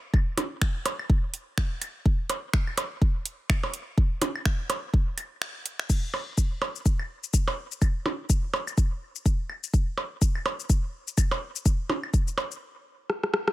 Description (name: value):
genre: techno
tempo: 125 BPM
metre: 4/4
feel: swing 58% on 16ths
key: none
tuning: none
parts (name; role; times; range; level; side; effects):
- electronic kick drum; drums; 0.1-12.2 s; none; -23 LUFS; equal; none
- claves and percussion blips; percussion; 0.1-12.5 s; none; -29 LUFS; right 2 dB; none
- house drum kit; drums; 0.4-13.5 s; crash cymbal, finger snaps, hi-hat, rim click, shaker; -30 LUFS; left 1 dB; none
room: digital ambience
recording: none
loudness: -25 LUFS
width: side -17 dB against mid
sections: 0.0-5.9 A section; 5.9-13.5 B section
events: break 5.4-5.9; stop 12.6-13.5; drum fill 13.1-13.5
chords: none